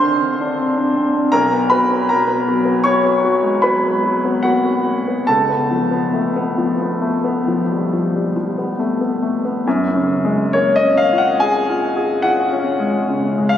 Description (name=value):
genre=classical, impressionist solo piano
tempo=66-82 BPM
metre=5/4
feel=rubato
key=unclear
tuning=A4 = 441 Hz
part: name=warm concert grand piano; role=solo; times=0.0-13.6 s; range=Bb1 to F6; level=-15 LUFS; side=left 1 dB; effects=none
room=wet church reverb, RT60 3.0 s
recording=recorded on a phone in the room, studio reverb, compression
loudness=-15 LUFS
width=side -10 dB against mid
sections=0.0-9.7 A section; 9.7-13.6 B section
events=none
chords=0.0 Bbadd9; 1.3 B5; 5.3 C#aug7; 9.7 F#maj9